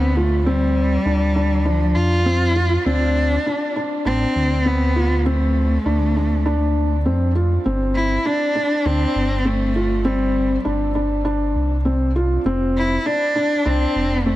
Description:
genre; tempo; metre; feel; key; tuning
piano and strings electronica; 100 BPM; 4/4; straight; D dorian; A4 = 440 Hz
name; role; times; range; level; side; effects
dark cello; melody; 0.0-14.4 s; F3 to F4; -22 LUFS; equal; shimmer reverb
felt-muted upright piano; riff; 0.0-14.4 s; C4 to F4; -21 LUFS; left 1 dB; shimmer reverb, digital delay
dark detuned saw bass; bass; 0.0-14.4 s; F1 to F2; -20 LUFS; equal; none
room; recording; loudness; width
light reverb, studio reverb; none; -17 LUFS; side -15 dB against mid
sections
0.0-14.4 A section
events
none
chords
0.0 Dm7; 7.7 Gsus4; 12.5 F5

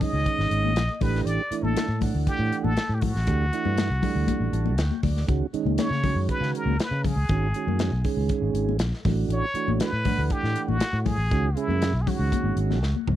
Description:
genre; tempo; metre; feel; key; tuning
electric jazz fusion; 119 BPM; 4/4; straight; unclear; A4 = 440 Hz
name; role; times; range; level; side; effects
trumpet with plunger mute; melody; 0.0-12.6 s; E4 to D#5; -30 LUFS; equal; tape echo
mellow tonewheel organ; accompaniment; 0.0-12.8 s; C#3 to A5; -29 LUFS; right 9 dB; slow rotary speaker
modern studio drum kit; drums; 0.0-13.2 s; hi-hat, kick drum, snare drum, toms; -29 LUFS; equal; none
congas; percussion; 0.0-13.2 s; none; -31 LUFS; left 16 dB; none
sustaining fretless electric bass; bass; 0.1-13.2 s; G#1 to C#3; -25 LUFS; equal; none
room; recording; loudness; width
little or no reverb; dry, close 1970s-style studio recording; -22 LUFS; side -12 dB against mid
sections
0.0-13.2 A section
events
tonewheel organ fill 4.3-5.3; drum fill 12.8-13.2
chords
0.0 C#sus2; 1.0 A7sus4; 3.3 Dsus4; 5.3 C#sus4; 9.1 Asus24; 11.3 C#sus4

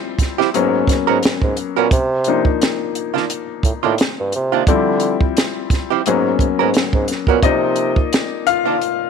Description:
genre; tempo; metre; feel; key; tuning
R&B, neo-soul; 87 BPM; 4/4; swing 54% on 16ths; unclear; A4 = 440 Hz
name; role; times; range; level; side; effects
clear baby grand piano; accompaniment; 0.0-9.1 s; F3 to F5; -20 LUFS; left 11 dB; none
compact cocktail drum kit; drums; 0.2-9.0 s; hi-hat, kick drum, snare drum; -18 LUFS; right 2 dB; none
archtop guitar, miked and amplified; second line; 0.4-8.8 s; Eb3 to Bb4; -18 LUFS; right 17 dB; wah
mellow bassoon; bass; 0.6-8.0 s; G2 to D3; -19 LUFS; right 2 dB; none
room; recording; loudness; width
little or no reverb; 1960s-style stereo with parts hard left and right; -15 LUFS; side -6 dB against mid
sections
0.0-9.1 A section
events
grand piano solo 0.0-9.1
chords
0.0 Dm11 (rootless); 0.5 Abm11; 1.9 Cm11; 4.7 Dm11; 6.0 Abm11; 7.4 Cm11

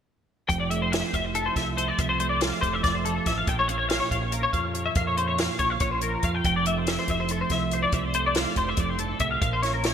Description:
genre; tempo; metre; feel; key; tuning
math rock and midwest emo; 283 BPM (eighths); 7/8; straight; F major; A4 = 435 Hz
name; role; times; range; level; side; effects
twelve-string electric guitar; accompaniment; 0.5-9.9 s; F2 to G4; -31 LUFS; right 7 dB; analog chorus
twelve-string electric guitar; arpeggios; 0.5-9.9 s; A4 to G5; -26 LUFS; left 3 dB; ensemble chorus, digital delay
growling fingered electric bass; bass; 0.5-9.9 s; F1 to F2; -31 LUFS; equal; overdrive
compact cocktail drum kit; drums; 0.5-9.9 s; hi-hat, kick drum, snare drum; -29 LUFS; equal; none
room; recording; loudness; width
moderate lush hall reverb, RT60 2.0 s; bright 1980s-style digital production; -23 LUFS; side -8 dB against mid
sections
0.5-9.9 A section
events
none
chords
0.5 Fmaj9; 3.5 Bbm6; 6.4 Fmaj9; 9.4 Bbm

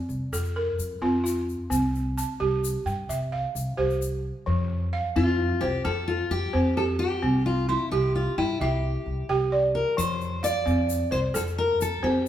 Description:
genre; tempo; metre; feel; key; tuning
west african traditional, West African string and xylophone music; 87 BPM (dotted quarters); 12/8; straight; F major; A4 = 439 Hz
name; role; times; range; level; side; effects
balafon; arpeggios; 0.0-12.3 s; F3 to C6; -26 LUFS; right 2 dB; none
upright bass; bass; 0.1-12.3 s; C2 to G2; -29 LUFS; equal; none
tube shaker; percussion; 0.1-4.1, 10.0-11.9 s; none; -38 LUFS; left 6 dB; none
fingerpicked steel-string acoustic guitar; melody; 5.2-12.3 s; E4 to D5; -27 LUFS; left 3 dB; none
room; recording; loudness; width
wet large studio reverb, RT60 1.5 s; band playing live in one room; -23 LUFS; side -11 dB against mid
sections
0.0-4.5 A section; 4.5-12.3 B section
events
steel-string acoustic guitar solo 4.5-12.3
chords
0.0 F; 1.7 C; 4.5 F; 7.2 C; 10.0 F

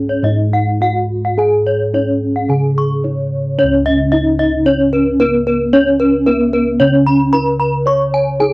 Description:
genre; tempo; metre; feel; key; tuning
Balinese gamelan; 111 BPM; 4/4; uneven beats; Db slendro; A4 = 440 Hz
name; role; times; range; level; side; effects
gamelan-type bronze metallophone; melody; 0.0-8.5 s; Cb4-45c to Db5; -16 LUFS; equal; cassette tape
gamelan-type bossed gongs; bass; 0.0-8.5 s; Db2 to Db5; -17 LUFS; equal; none
gamelan-type bronze metallophone; arpeggios; 0.1-8.5 s; Cb5-45c to Db6; -16 LUFS; left 1 dB; cassette tape
room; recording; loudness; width
moderate booth ambience, RT60 0.2 s; home recording on cassette; -11 LUFS; side -23 dB against mid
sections
0.0-3.6 A section; 3.6-8.5 B section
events
break 2.8-3.6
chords
none

